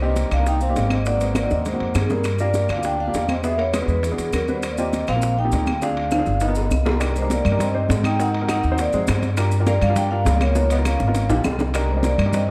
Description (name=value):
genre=Afro-Cuban jazz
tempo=202 BPM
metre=4/4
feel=straight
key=unclear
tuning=A4 = 440 Hz
part: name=vibraphone with medium mallets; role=melody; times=0.0-12.5 s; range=Ab4 to G5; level=-27 LUFS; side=equal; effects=none
part: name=breathy tenor saxophone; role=second line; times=0.0-12.5 s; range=Eb3 to Eb4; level=-32 LUFS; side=equal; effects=none
part: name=dark baby grand piano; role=accompaniment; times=0.0-12.5 s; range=Bb3 to C5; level=-30 LUFS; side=equal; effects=none
part: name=upright bass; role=bass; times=0.0-12.5 s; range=G1 to Ab2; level=-24 LUFS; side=equal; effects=none
part: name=bongos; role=percussion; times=0.0-12.5 s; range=none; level=-34 LUFS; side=equal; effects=none
part: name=congas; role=percussion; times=0.0-12.5 s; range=none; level=-30 LUFS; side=equal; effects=none
part: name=maracas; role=percussion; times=0.2-12.5 s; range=none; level=-42 LUFS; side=equal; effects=none
part: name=timbales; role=percussion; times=0.2-12.5 s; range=none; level=-33 LUFS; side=equal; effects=none
part: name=claves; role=percussion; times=0.3-12.3 s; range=none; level=-39 LUFS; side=equal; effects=none
room=light reverb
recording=dark, warm production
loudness=-21 LUFS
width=mono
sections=0.0-7.0 A section; 7.0-12.5 B section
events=drum fill 1.4-2.3, 6.1-7.0, 10.6-11.7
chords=0.0 Cm7; 1.1 Ab9; 2.3 Gm7; 3.4 E9; 4.6 Eb69; 5.8 Dm7b5; 6.4 G7alt; 7.0 Cm9; 8.2 Ab9; 9.4 Gm7; 10.6 Db13; 11.7 Cm9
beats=0.17 0.46 0.76 | 1.06 1.36 1.66 1.95 | 2.25 2.55 2.85 3.15 | 3.44 3.74 4.04 4.33 | 4.63 4.93 5.23 5.52 | 5.82 6.12 6.41 6.71 | 7.01 7.30 7.60 7.90 | 8.19 8.49 8.79 9.08 | 9.38 9.67 9.97 10.27 | 10.56 10.86 11.15 11.45 | 11.74 12.04 12.34